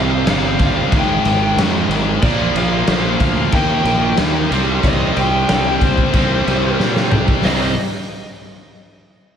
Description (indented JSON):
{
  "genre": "hard rock",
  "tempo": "92 BPM",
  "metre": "4/4",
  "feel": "straight",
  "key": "C minor",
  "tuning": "A4 = 440 Hz",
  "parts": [
    { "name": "lead guitar through a small cranked amp", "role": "melody", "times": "0.0-7.8 s", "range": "C5 to G5", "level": "-22 LUFS", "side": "left 2 dB", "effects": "overdrive, slapback echo, analog delay" },
    { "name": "crunchy overdriven guitar", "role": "riff", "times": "0.0-7.7 s", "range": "Ab2 to Eb4", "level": "-22 LUFS", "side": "right 10 dB", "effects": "spring reverb, slapback echo" },
    { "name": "heavy high-gain guitar", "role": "riff", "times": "0.0-7.7 s", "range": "Ab2 to Eb4", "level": "-23 LUFS", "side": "equal", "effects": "distortion" },
    { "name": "scooped high-gain guitar", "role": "riff", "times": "0.0-7.7 s", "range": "Ab2 to Eb4", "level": "-24 LUFS", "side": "left 10 dB", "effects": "distortion" },
    { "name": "fuzz fingered electric bass", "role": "bass", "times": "0.0-7.8 s", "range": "G1 to Bb2", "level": "-21 LUFS", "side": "equal", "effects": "overdrive" },
    { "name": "raw garage drum kit", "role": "drums", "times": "0.3-7.6 s", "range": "crash cymbal, hi-hat, kick drum, snare drum, toms", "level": "-18 LUFS", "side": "equal", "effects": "none" }
  ],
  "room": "light reverb, studio reverb",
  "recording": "none",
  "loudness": "-13 LUFS",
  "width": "side -8 dB against mid",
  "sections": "0.0-7.4 A section; 7.4-9.4 B section",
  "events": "drum fill 6.8-7.4",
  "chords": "0.0 C5; 0.9 Ab5; 2.2 Bb; 3.5 Eb; 4.5 C5"
}